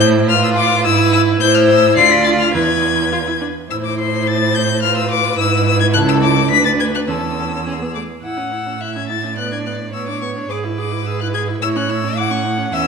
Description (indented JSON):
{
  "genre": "quick classical-period movement for string quartet",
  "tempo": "106 BPM",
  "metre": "2/4",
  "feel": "straight",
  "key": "A major from 5.9 s",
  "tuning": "A4 = 440 Hz",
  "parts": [
    { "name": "rich violin", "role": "melody", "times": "0.0-12.9 s", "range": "C6 to C7", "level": "-18 LUFS", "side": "left 8 dB", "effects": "none" },
    { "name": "rich violin", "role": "second line", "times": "0.0-12.9 s", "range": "G#4 to F#5", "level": "-21 LUFS", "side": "left 5 dB", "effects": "none" },
    { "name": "warm viola", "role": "accompaniment", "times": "0.0-12.9 s", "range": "A3 to G#4", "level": "-20 LUFS", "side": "right 2 dB", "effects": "none" },
    { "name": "warm cello", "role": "bass", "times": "0.0-12.9 s", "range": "C#2 to A2", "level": "-20 LUFS", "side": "right 6 dB", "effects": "none" }
  ],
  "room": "moderate scoring stage reverb, RT60 1.8 s",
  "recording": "minimal, uncompressed stereo recording",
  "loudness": "-14 LUFS",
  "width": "side -5 dB against mid",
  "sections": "0.0-8.2 A section; 8.2-12.9 B section",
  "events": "none",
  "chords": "0.3 Bm7b5/A; 0.8 E/G#; 1.4 Am; 2.0 Dm; 2.5 E; 3.7 Am; 4.8 Bm7b5/A; 5.4 E/G#; 5.9 A/C#; 6.5 Bm/D; 7.1 A/E; 7.7 E; 8.2 A; 9.4 Bm7/A; 10.5 E/G#; 11.6 A",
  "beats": "| 0.28 0.85 | 1.41 1.97 | 2.54 3.12 | 3.70 4.27 | 4.83 5.38 | 5.94 6.51 | 7.08 7.66 | 8.24 8.81 | 9.38 9.94 | 10.50 11.06 | 11.62 12.18 | 12.73"
}